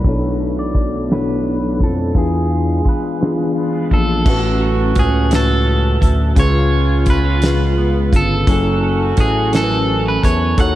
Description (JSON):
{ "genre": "slow six-eight R&B", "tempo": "57 BPM (dotted quarters)", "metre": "6/8", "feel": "straight", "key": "A major", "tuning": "A4 = 439 Hz", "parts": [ { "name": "electric guitar at the edge of break-up", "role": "melody", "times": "0.0-10.8 s", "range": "G#4 to F#5", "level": "-22 LUFS", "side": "right 1 dB", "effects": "none" }, { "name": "clean electric guitar", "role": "second line", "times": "0.0-10.8 s", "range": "A2 to A4", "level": "-27 LUFS", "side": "right 3 dB", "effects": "analog chorus" }, { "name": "mellow tine electric piano", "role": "accompaniment", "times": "0.0-10.8 s", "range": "A2 to G#5", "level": "-19 LUFS", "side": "left 2 dB", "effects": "slow stereo tremolo" }, { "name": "damped 70s drum kit", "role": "drums", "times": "0.0-10.7 s", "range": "crash cymbal, hi-hat, kick drum, snare drum", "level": "-18 LUFS", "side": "equal", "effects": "none" }, { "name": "smooth synth bass", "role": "bass", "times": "0.1-10.8 s", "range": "F#1 to F2", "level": "-17 LUFS", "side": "equal", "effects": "none" }, { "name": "clear horn section", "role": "stabs", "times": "4.3-10.8 s", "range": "A3 to A4", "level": "-27 LUFS", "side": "right 3 dB", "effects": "diffuse ambient delay" } ], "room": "moderate lush hall reverb, RT60 2.7 s", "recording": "dreamy mix soaked in reverb, low-pass filter", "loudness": "-13 LUFS", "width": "side -14 dB against mid", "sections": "0.0-4.3 A section; 4.3-10.8 B section", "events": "filter sweep 0.0-4.3", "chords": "0.0 Bm11; 2.2 E7b9; 4.3 A6; 6.4 C#7; 8.5 F#m7" }